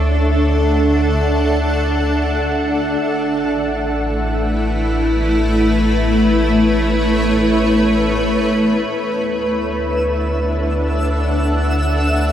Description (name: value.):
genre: ambient.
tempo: free time.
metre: none.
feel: none.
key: D major.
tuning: A4 = 438 Hz.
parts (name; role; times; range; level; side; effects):
granular cloud pad; sustained chords; 0.0-12.3 s; A3 to F#5; -16 LUFS; equal; built-in reverb.
warm sub bass; bass; 0.0-12.3 s; A1 to D2; -20 LUFS; equal; none.
twinkling granular texture; texture; 9.7-12.3 s; E5 to E6; -25 LUFS; equal; built-in reverb.
room: wet huge ambient reverb, RT60 8.6 s.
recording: none.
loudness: -14 LUFS.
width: side -10 dB against mid.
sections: 0.0-8.9 A section; 8.9-12.3 B section.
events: none.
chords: 0.0 Dadd9; 3.0 Aadd9; 8.9 D69.